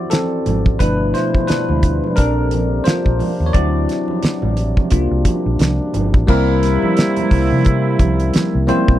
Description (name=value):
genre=lush 1970s-style soul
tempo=88 BPM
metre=4/4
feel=swing 58% on 16ths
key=unclear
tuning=A4 = 442 Hz
part: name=barky tine electric piano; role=accompaniment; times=0.0-9.0 s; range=B2 to E5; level=-19 LUFS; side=left 2 dB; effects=wide subtle chorus
part: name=damped 70s drum kit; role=drums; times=0.1-9.0 s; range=crash cymbal, hi-hat, kick drum, snare drum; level=-16 LUFS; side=equal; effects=none
part: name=congas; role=percussion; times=0.1-8.9 s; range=none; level=-25 LUFS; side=right 5 dB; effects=none
part: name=vintage muted fingered electric bass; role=bass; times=0.5-9.0 s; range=G1 to C3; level=-18 LUFS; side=equal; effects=none
part: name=mellow French horn section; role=sustained chords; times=0.8-9.0 s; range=B2 to E4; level=-25 LUFS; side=left 2 dB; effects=none
part: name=warm horn section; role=stabs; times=6.3-8.6 s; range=C3 to E4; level=-22 LUFS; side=right 6 dB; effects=none
room=little or no reverb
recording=dry, close 1970s-style studio recording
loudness=-14 LUFS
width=side -13 dB against mid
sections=0.0-6.3 A section; 6.3-9.0 B section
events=tine electric piano solo 0.0-6.3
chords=0.0 D9; 0.8 G13; 2.2 Bbmaj9; 3.5 D9; 4.9 C9sus4; 6.3 C7